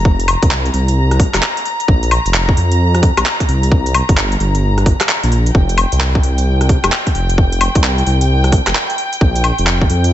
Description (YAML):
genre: UK garage, two-step garage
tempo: 131 BPM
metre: 4/4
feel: swing 64% on 16ths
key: unclear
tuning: A4 = 442 Hz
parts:
  - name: dark studio violin section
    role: sustained chords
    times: 0.0-10.1 s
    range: G5 to Bb5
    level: -22 LUFS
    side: left 1 dB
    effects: sidechain pumping
  - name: dark detuned saw bass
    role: bass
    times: 0.0-10.1 s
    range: F1 to F2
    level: -14 LUFS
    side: equal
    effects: sidechain pumping
  - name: electronic kick drum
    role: drums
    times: 0.1-9.9 s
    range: none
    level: -14 LUFS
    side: equal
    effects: none
  - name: garage drum kit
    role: drums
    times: 0.2-10.1 s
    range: handclaps, hi-hat, rim click, woodblock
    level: -18 LUFS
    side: left 1 dB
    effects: none
room: little or no reverb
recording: nothing above 8.0 kHz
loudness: -12 LUFS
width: side -12 dB against mid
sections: 0.0-10.1 A section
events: none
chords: 0.0 F5; 1.7 Bb5; 3.5 C5; 5.5 F5; 9.0 Bb5